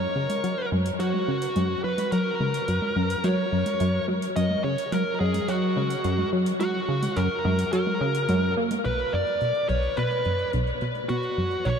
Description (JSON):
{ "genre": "ambient, sequencer-driven space music", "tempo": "107 BPM", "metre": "4/4", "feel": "straight", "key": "unclear", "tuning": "A4 = 440 Hz", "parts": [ { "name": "bluesy overdriven lead guitar", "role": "melody", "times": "0.0-11.8 s", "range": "F#4 to D#5", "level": "-26 LUFS", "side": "equal", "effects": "distortion, ping-pong delay" }, { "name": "plucky analog bass", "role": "riff", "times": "0.0-11.8 s", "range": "B1 to A#3", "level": "-25 LUFS", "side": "equal", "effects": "analog chorus, ping-pong delay" }, { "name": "electronic hi-hat and congas", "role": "percussion", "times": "0.3-11.8 s", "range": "none", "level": "-35 LUFS", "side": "right 2 dB", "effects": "ping-pong delay" } ], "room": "moderate huge ambient reverb, RT60 8.3 s", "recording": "none", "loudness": "-23 LUFS", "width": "side -7 dB against mid", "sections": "0.0-8.8 A section; 8.8-11.8 B section", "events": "filter sweep on analog synth bass 0.0-8.8, 8.8-11.8", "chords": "0.0 F#; 8.8 B5", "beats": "0.44 1.00 1.56 | 2.12 2.68 3.24 3.80 | 4.36 4.92 5.49 6.05 | 6.61 7.17 7.73 8.29 | 8.85 9.41 9.97 10.53 | 11.09 11.65" }